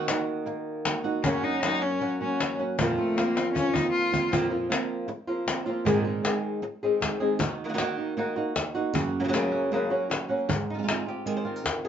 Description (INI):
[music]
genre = flamenco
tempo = 156 BPM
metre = 4/4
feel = straight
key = unclear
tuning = A4 = 440 Hz
[part]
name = flamenco guitar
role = melody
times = 0.0-11.9 s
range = F2 to C5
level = -28 LUFS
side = equal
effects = none
[part]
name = flamenco guitar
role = stabs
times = 0.0-11.7 s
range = F2 to Ab4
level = -31 LUFS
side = right 5 dB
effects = none
[part]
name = cajon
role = percussion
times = 0.1-11.8 s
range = none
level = -30 LUFS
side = left 3 dB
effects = none
[part]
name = rich cello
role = second line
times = 1.2-4.3 s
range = A3 to F4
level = -28 LUFS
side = left 4 dB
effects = none
[sound]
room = wet small room reverb, RT60 0.5 s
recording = nothing above 7.7 kHz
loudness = -25 LUFS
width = side -9 dB against mid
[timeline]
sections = 0.0-4.3 A section; 4.3-10.5 B section; 10.5-11.9 C section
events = cello solo 0.0-4.3; drum fill 3.2-4.3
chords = 0.0 Ebm; 1.2 Gb; 2.8 Fsus4; 5.9 Abadd9; 7.4 Ebm; 8.9 Gb; 10.5 Ab6